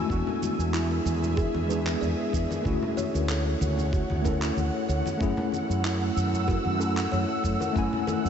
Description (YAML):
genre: sunset chillout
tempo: 94 BPM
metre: 4/4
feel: swing 54% on 16ths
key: F# minor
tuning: A4 = 440 Hz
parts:
  - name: mellow tine electric piano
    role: accompaniment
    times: 0.0-8.3 s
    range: G#3 to G#5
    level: -30 LUFS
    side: moving between left 5 dB and right 4 dB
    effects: medium stereo tremolo, auto-pan, diffuse ambient delay
  - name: ethereal airy pad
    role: sustained chords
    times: 0.0-8.3 s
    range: A3 to F#6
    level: -32 LUFS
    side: equal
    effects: ensemble chorus, built-in reverb, tremolo
  - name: fretless electric bass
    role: bass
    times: 0.1-8.3 s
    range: D2 to F#2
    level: -28 LUFS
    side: right 1 dB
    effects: none
  - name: electronic kick drum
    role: drums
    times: 0.1-7.9 s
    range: none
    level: -29 LUFS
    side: right 1 dB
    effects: overdrive
  - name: electronic shaker and handclaps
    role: drums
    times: 0.1-8.3 s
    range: none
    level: -38 LUFS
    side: right 1 dB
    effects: overdrive
  - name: bongos and congas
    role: percussion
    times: 0.3-8.2 s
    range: none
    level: -37 LUFS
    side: left 2 dB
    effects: none
  - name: kalimba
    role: arpeggios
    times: 0.7-8.3 s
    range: E4 to D5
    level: -34 LUFS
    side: equal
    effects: diffuse ambient delay
room: moderate huge ambient reverb, RT60 8.9 s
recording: dreamy mix soaked in reverb, nothing above 7.9 kHz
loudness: -24 LUFS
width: side -8 dB against mid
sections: 0.0-8.3 A section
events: none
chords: 0.1 E7; 2.7 Dmaj7; 5.2 F#m7